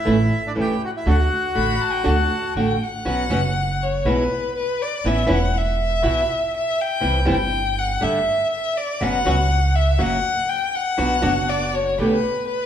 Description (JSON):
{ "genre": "tango", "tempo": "121 BPM", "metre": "4/4", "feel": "rubato", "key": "D major, B minor from 3.1 s", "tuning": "A4 = 442 Hz", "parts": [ { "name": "bandoneon", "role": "melody", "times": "0.0-2.5 s", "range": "D4 to G5", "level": "-23 LUFS", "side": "left 2 dB", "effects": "none" }, { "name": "flamenco guitar", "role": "accompaniment", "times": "0.1-12.2 s", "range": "B2 to G4", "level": "-23 LUFS", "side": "right 1 dB", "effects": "none" }, { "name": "dark chamber string section", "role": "stabs", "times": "0.1-2.8, 11.0-12.2 s", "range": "A3 to G4", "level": "-29 LUFS", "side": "right 4 dB", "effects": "none" }, { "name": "upright bass", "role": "bass", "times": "0.1-12.2 s", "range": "E1 to D2", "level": "-23 LUFS", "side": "right 1 dB", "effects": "none" }, { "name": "warm violin", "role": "second line", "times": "1.6-12.7 s", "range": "B4 to B5", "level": "-22 LUFS", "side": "left 2 dB", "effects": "none" } ], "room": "wet large studio reverb, RT60 1.4 s", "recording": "band playing live in one room", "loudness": "-18 LUFS", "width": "side -9 dB against mid", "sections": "0.0-3.1 A section; 3.1-12.7 B section", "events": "violin solo 3.1-12.7", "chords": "0.0 A; 1.1 D; 3.1 Bsus2; 4.1 E/B; 5.1 Aadd9; 6.0 Esus2/B; 7.0 C; 8.0 G5; 9.0 F#sus4; 10.0 F#; 11.0 Bm; 12.0 Gadd9/B" }